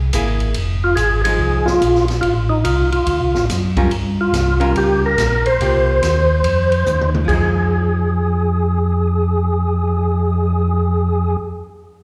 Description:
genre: soul jazz organ trio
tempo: 143 BPM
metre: 4/4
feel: swing 65% on 8ths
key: F minor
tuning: A4 = 441 Hz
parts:
  - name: mellow tonewheel organ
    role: bass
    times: 0.0-11.4 s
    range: F1 to G2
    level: -20 LUFS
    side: equal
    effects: chorus vibrato, slow rotary speaker
  - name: archtop guitar, miked and amplified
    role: accompaniment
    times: 0.1-11.5 s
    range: F3 to Bb4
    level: -26 LUFS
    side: equal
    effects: plate reverb, slapback echo
  - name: open jazz drum kit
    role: drums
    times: 0.1-10.6 s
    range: crash cymbal, cymbal swell, hi-hat, kick drum, ride cymbal, snare drum, toms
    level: -27 LUFS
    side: equal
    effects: none
  - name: percussive tonewheel organ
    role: melody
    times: 0.8-11.4 s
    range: Eb4 to C5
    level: -20 LUFS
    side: equal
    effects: slow rotary speaker, overdrive, chorus vibrato, plate reverb, slapback echo
room: light reverb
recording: live gig heard through the venue's PA, recital hall reverb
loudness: -17 LUFS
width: mono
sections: 0.0-3.9 A section; 3.9-7.3 B section; 7.3-10.6 C section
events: drum fill 6.9-7.3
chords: 0.0 Caug7; 0.6 Fm7; 2.2 F7/A; 3.1 D7; 3.9 Gm7b5; 5.6 C7sus4; 7.3 Fm7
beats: 0.13 | 0.55 0.97 1.39 1.81 | 2.23 2.65 3.07 3.49 | 3.91 4.33 4.75 5.17 | 5.59 6.01 6.43 6.86 | 7.28 7.70 8.12 8.54 | 8.96 9.38 9.80 10.22

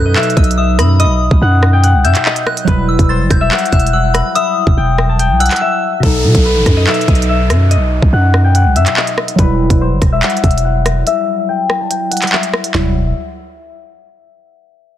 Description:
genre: hip hop, drill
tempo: 143 BPM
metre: 4/4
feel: half-time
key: E harmonic minor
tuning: A4 = 441 Hz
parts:
  - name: concert harp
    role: melody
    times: 0.0-12.9 s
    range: A4 to A5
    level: -16 LUFS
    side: left 4 dB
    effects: low-pass filter, digital delay
  - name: soft synth bell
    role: second line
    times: 0.0-5.6 s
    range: B5 to A6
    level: -20 LUFS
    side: left 1 dB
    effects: chorus, phaser, digital delay
  - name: glassy digital keys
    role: accompaniment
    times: 0.0-12.9 s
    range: B2 to E4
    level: -20 LUFS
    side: right 1 dB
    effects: chorus, low-pass filter
  - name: growling 808-style bass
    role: bass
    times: 0.0-13.1 s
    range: E1 to B2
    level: -12 LUFS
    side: equal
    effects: none
  - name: drill drum kit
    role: drums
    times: 0.2-12.8 s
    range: handclaps, hi-hat, kick drum, rim click, snare drum, toms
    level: -14 LUFS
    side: equal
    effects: none
  - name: downlifter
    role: sound effects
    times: 6.0-9.4 s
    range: none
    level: -24 LUFS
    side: equal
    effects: none
room: little or no reverb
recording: dense, heavily limited modern master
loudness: -10 LUFS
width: side -12 dB against mid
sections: 0.0-6.0 A section; 6.0-12.7 B section; 12.7-14.4 C section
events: break 5.6-6.0, 11.1-12.7; filter sweep 6.0-12.7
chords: 0.0 B; 2.7 Emadd9; 6.0 B; 9.4 Emadd9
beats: 0.16 0.58 | 1.00 1.42 1.84 2.26 | 2.67 3.10 3.52 3.93 | 4.35 4.77 5.19 5.61 | 6.03 6.45 6.87 7.29 | 7.71 8.13 8.55 8.97 | 9.39 9.81 10.23 10.65 | 11.07 11.49 11.91 12.33 | 12.74

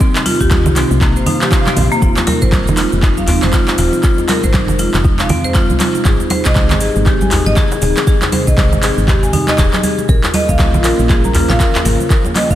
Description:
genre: afro house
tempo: 119 BPM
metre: 4/4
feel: swing 59% on 16ths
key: F minor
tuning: A4 = 436 Hz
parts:
  - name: warm analog pad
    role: sustained chords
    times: 0.0-12.6 s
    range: C3 to G5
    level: -20 LUFS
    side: equal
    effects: chorus, phaser, sidechain pumping
  - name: marimba with hard mallets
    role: arpeggios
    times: 0.0-12.6 s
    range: Bb3 to Bb5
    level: -18 LUFS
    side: equal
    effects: sidechain pumping, tape echo
  - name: afro-pop drum kit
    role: drums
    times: 0.0-12.6 s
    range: cabasa, handclaps, hi-hat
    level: -19 LUFS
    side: equal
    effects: small room reverb
  - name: electronic kick drum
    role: drums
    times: 0.0-12.6 s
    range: none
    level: -13 LUFS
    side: equal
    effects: small room reverb
  - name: congas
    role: percussion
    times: 0.2-12.5 s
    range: none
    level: -21 LUFS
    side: right 2 dB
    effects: none
  - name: woody FM bass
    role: bass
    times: 0.4-12.6 s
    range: Eb1 to F2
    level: -17 LUFS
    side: equal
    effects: sidechain pumping
  - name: swell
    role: sound effects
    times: 1.2-2.0 s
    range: none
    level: -25 LUFS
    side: right 4 dB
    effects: none
  - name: djembe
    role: percussion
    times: 2.2-12.5 s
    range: none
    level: -22 LUFS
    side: left 1 dB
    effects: none
room: moderate lush hall reverb, RT60 1.7 s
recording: dreamy mix soaked in reverb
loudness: -11 LUFS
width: side -12 dB against mid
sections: 0.0-12.6 A section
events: swell 1.2-2.0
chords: 0.0 Cm; 2.0 Fm7; 6.1 Ab; 10.1 Bbm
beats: | 0.01 0.51 1.01 1.52 | 2.02 2.53 3.03 3.54 | 4.04 4.54 5.05 5.55 | 6.06 6.56 7.06 7.57 | 8.07 8.58 9.08 9.59 | 10.09 10.59 11.10 11.60 | 12.11

